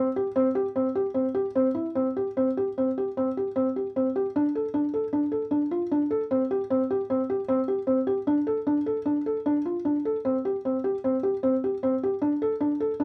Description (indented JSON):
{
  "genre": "contemporary instrumental, contemporary",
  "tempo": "152 BPM",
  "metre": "5/4",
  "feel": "straight",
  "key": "unclear",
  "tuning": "A4 = 440 Hz",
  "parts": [
    { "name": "felt-muted upright piano", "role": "solo", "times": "0.0-13.0 s", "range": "C4 to A4", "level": "-26 LUFS", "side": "equal", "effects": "none" }
  ],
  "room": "light reverb",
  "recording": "dark, warm production",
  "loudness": "-26 LUFS",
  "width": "mono",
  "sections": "0.0-2.4 A section; 2.4-13.0 B section",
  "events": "none",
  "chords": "none"
}